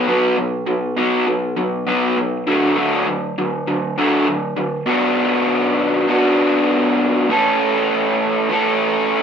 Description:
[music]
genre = rock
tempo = 100 BPM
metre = 4/4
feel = straight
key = unclear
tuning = A4 = 440 Hz
[part]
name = raw garage guitar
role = solo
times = 0.0-9.2 s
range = A2 to A4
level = -15 LUFS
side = equal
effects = overdrive
[sound]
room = moderate studio reverb, RT60 0.7 s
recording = band playing live in one room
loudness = -15 LUFS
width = side -7 dB against mid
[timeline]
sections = 0.0-4.9 A section; 4.9-9.2 B section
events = none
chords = 0.0 B5; 2.5 D; 4.9 Bm; 7.3 A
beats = | 0.07 0.67 1.27 1.88 | 2.48 3.08 3.68 4.28 | 4.89 5.49 6.09 6.70 | 7.30 7.90 8.51 9.11

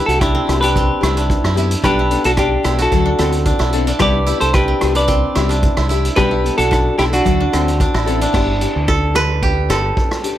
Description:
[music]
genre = highlife guitar band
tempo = 111 BPM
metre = 4/4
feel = straight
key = G major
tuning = A4 = 440 Hz
[part]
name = semi-hollow electric guitar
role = melody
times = 0.0-8.1 s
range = D4 to D5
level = -17 LUFS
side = equal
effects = plate reverb
[part]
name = picked steel-string acoustic guitar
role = accompaniment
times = 0.0-10.4 s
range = F#3 to A4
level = -23 LUFS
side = left 9 dB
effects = plate reverb
[part]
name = koto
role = arpeggios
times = 0.0-10.4 s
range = C4 to B4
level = -20 LUFS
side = right 2 dB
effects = plate reverb
[part]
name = deep dub fingered electric bass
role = bass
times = 0.1-9.9 s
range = G1 to F#2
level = -19 LUFS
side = equal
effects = none
[part]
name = vintage drum kit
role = drums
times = 0.1-10.4 s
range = crash cymbal, hi-hat, kick drum, rim click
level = -20 LUFS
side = equal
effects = none
[sound]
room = light reverb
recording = none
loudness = -13 LUFS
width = side -12 dB against mid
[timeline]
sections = 0.0-8.3 A section; 8.3-10.4 B section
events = koto solo 8.3-10.4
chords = 0.0 Cmaj7; 1.8 Gadd9/B; 2.9 D7; 4.0 Cmaj7; 6.2 Gadd9/B; 7.3 D7; 8.3 G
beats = 0.22 0.76 1.30 | 1.84 2.38 2.93 3.47 | 4.01 4.55 5.09 5.63 | 6.17 6.72 7.26 7.80 | 8.34 8.89 9.43 9.97

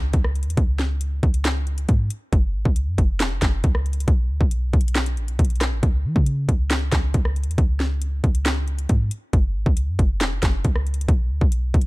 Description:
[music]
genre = hip hop, trap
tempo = 137 BPM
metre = 4/4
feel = half-time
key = unclear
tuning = A4 = 441 Hz
[part]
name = clean 808-style bass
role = bass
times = 0.0-11.9 s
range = E1 to E3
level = -22 LUFS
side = equal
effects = none
[part]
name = trap drum kit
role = drums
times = 0.1-11.9 s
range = handclaps, hi-hat, kick drum, rim click, snare drum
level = -20 LUFS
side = equal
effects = none
[sound]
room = little or no reverb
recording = dark, warm production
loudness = -19 LUFS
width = side -22 dB against mid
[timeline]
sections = 0.0-11.9 A section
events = none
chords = none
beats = 0.14 | 0.57 1.01 1.45 1.89 | 2.33 2.76 3.20 3.64 | 4.08 4.51 4.95 5.39 | 5.83 6.27 6.71 7.14 | 7.58 8.02 8.46 8.89 | 9.33 9.77 10.21 10.65 | 11.09 11.52

